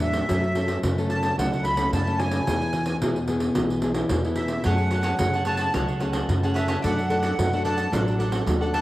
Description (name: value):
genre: samba and choro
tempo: 110 BPM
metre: 4/4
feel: straight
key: unclear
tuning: A4 = 440 Hz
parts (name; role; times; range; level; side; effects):
- accordion; melody; 0.0-8.8 s; E5 to B5; -28 LUFS; right 1 dB; light tremolo tuning, cassette tape, tape echo
- nylon-string guitar; accompaniment; 0.0-8.8 s; A2 to A4; -26 LUFS; left 1 dB; cassette tape
- upright bass; bass; 0.0-8.8 s; A1 to F#2; -27 LUFS; equal; none
- pandeiro; percussion; 0.0-8.8 s; none; -28 LUFS; right 1 dB; none
- cavaquinho; accompaniment; 4.7-8.8 s; D4 to A5; -31 LUFS; right 2 dB; cassette tape
room: light reverb, studio reverb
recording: home recording on cassette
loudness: -21 LUFS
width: side -16 dB against mid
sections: 0.0-8.8 A section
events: accordion solo 0.0-8.8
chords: 0.3 F#m; 2.5 E; 4.7 F#madd9; 6.8 D/F#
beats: | 0.29 0.83 1.38 1.93 | 2.47 3.02 3.56 4.11 | 4.65 5.20 5.75 6.29 | 6.84 7.38 7.93 8.48